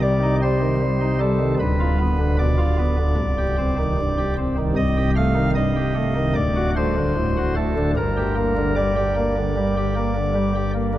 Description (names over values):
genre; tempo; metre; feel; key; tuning
classical, chorale-style piece for pipe organ; 76 BPM; 4/4; rubato; G minor from 4.8 s; A4 = 440 Hz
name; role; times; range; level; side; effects
pipe organ, cornet; solo; 0.0-11.0 s; C1 to F5; -18 LUFS; equal; none
room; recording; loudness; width
wet cathedral reverb, RT60 5.9 s; dark, warm production, vinyl crackle; -18 LUFS; side -14 dB against mid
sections
0.0-11.0 A section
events
none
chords
0.0 Cm; 1.6 Bdim/D; 3.2 Cm; 4.8 Am7b5/C; 6.4 D7; 8.0 Gm